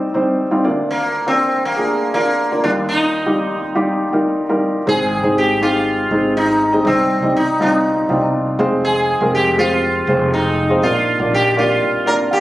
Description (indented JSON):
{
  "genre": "piano-driven pop",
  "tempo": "121 BPM",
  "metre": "4/4",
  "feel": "straight",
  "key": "unclear",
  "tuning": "A4 = 440 Hz",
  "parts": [
    { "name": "sitar", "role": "melody", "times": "0.0-12.4 s", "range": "Bb3 to Bb4", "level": "-17 LUFS", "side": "equal", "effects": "none" },
    { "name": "felt-muted upright piano", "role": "accompaniment", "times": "0.0-12.4 s", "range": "C2 to F5", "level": "-17 LUFS", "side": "equal", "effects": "none" },
    { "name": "upright bass", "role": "bass", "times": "4.9-11.8 s", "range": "F1 to C2", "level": "-24 LUFS", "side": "equal", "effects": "none" }
  ],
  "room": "moderate recital hall reverb, RT60 1.6 s",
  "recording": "recorded on a phone in the room, club reverb, compression",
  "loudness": "-14 LUFS",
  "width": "side -16 dB against mid",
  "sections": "0.0-4.9 A section; 4.9-12.4 B section",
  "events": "felt piano fill 12.1-12.4",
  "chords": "0.0 Cm; 0.6 Bb/D; 2.6 Ebadd9; 4.9 Ab; 6.9 Cm; 8.6 Fm; 10.8 Bb"
}